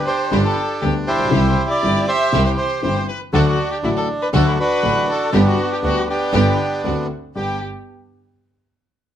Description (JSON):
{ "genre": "tango", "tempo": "120 BPM", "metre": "4/4", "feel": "rubato", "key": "G major", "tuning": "A4 = 444 Hz", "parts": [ { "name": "bandoneon", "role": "melody", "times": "0.0-7.6 s", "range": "B3 to E5", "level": "-20 LUFS", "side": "right 2 dB", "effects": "none" }, { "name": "warm violin", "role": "second line", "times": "0.0-7.6 s", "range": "E4 to E5", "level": "-26 LUFS", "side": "left 3 dB", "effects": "none" }, { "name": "warm grand piano", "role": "accompaniment", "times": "0.0-7.6 s", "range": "G1 to G4", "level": "-21 LUFS", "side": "left 3 dB", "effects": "none" }, { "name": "warm symphonic string section", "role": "stabs", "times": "0.0-7.6 s", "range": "A3 to G4", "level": "-27 LUFS", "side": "right 2 dB", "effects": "none" }, { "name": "clear double bass", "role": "bass", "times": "0.0-7.6 s", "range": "G1 to D2", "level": "-21 LUFS", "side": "right 1 dB", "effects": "none" } ], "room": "moderate club reverb, RT60 0.8 s", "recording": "none", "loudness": "-16 LUFS", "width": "side -10 dB against mid", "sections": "0.0-7.4 A section; 7.4-9.2 B section", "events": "none", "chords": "0.0 G; 1.3 C; 3.3 D; 5.3 G; 6.8 D7; 7.4 G" }